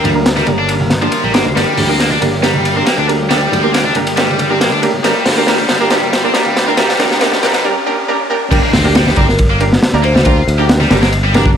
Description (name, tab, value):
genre	breakbeat, breaks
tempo	138 BPM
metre	4/4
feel	straight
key	G minor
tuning	A4 = 440 Hz
part	lush unison pad	sustained chords	0.0-7.6 s	D3 to Bb4	-22 LUFS	equal	chorus, sidechain pumping
part	heavy high-gain guitar	riff	0.0-11.4 s	F3 to G4	-17 LUFS	left 1 dB	distortion, low-pass filter, digital delay
part	modern bright fingered electric bass	bass	0.0-11.6 s	G1 to D2	-18 LUFS	equal	none
part	crunchy breakbeat drum kit	drums	0.0-11.6 s	crash cymbal, hi-hat, kick drum, ride cymbal, snare drum	-15 LUFS	equal	high-pass filter on kick, high-pass filter on cymbals, high-pass filter on hats, high-pass filter on snare, high-pass filter on room
part	congas	percussion	0.0-11.5 s	none	-23 LUFS	right 2 dB	none
part	riser and impact	sound effects	1.3-10.3 s	none	-26 LUFS	equal	none
part	orchestra-hit-like synth stab	stabs	0.1-11.6 s	Bb3 to C5	-17 LUFS	right 2 dB	built-in reverb, vintage 12-bit sampler grit, digital delay
part	marimba with soft mallets	melody	9.3-10.2 s	Bb4 to C5	-21 LUFS	left 1 dB	AM radio sound, digital delay
room	light reverb, studio reverb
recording	vinyl crackle, high-pass filter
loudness	-10 LUFS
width	side -8 dB against mid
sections	0.0-8.5 A section; 8.5-11.6 B section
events	build-up 0.0-8.5; filter sweep on synth stab 0.0-8.5; drum fill 1.6-7.6; break 7.6-8.5; drop 8.5-11.6; impact 8.5-10.3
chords	0.0 Gm